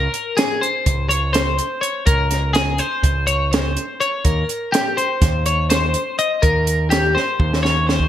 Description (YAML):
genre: math rock and midwest emo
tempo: 248 BPM (eighths)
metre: 9/8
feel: straight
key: Eb mixolydian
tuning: A4 = 440 Hz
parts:
  - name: twelve-string electric guitar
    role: arpeggios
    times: 0.0-8.1 s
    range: G4 to Eb5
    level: -19 LUFS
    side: left 2 dB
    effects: lush chorus, digital delay
  - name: growling picked electric bass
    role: bass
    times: 0.0-8.1 s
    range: Db2 to Eb2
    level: -20 LUFS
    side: right 1 dB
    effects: overdrive
  - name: compact cocktail drum kit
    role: drums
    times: 0.1-8.1 s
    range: hi-hat, kick drum, snare drum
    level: -20 LUFS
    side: right 1 dB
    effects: gated reverb
room: moderate plate reverb, RT60 1.6 s, small room ambience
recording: bright 1980s-style digital production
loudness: -16 LUFS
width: side -11 dB against mid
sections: 0.0-8.1 A section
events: drum fill 7.1-8.1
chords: 0.0 Db5; 4.2 Eb6